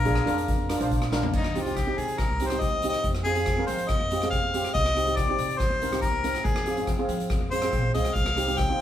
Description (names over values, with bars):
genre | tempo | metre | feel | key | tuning
calypso | 141 BPM | 4/4 | straight | C minor | A4 = 443 Hz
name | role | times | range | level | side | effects
warm harmonica | melody | 0.0-8.8 s | Eb4 to G5 | -27 LUFS | left 2 dB | none
upright bass | bass | 0.0-8.7 s | Bb1 to F3 | -31 LUFS | equal | none
steel pan | accompaniment | 0.1-8.8 s | C4 to C5 | -29 LUFS | right 1 dB | none
street-band drum kit | drums | 0.1-8.7 s | crash cymbal, hi-hat, kick drum, rim click, snare drum, toms | -29 LUFS | left 1 dB | none
room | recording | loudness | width
wet studio reverb, RT60 0.8 s | band playing live in one room | -23 LUFS | side -11 dB against mid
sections
0.0-1.3 A section; 1.3-8.8 B section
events
drum fill 1.1; harmonica solo 1.3-8.8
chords
0.0 Bbadd9; 1.3 Cm; 3.0 Fm; 4.8 Cm; 6.5 Fm; 8.2 Cm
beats
0.06 0.48 0.91 | 1.34 1.76 2.19 2.62 | 3.05 3.47 3.90 4.33 | 4.75 5.18 5.60 6.03 | 6.46 6.88 7.31 7.73 | 8.16 8.58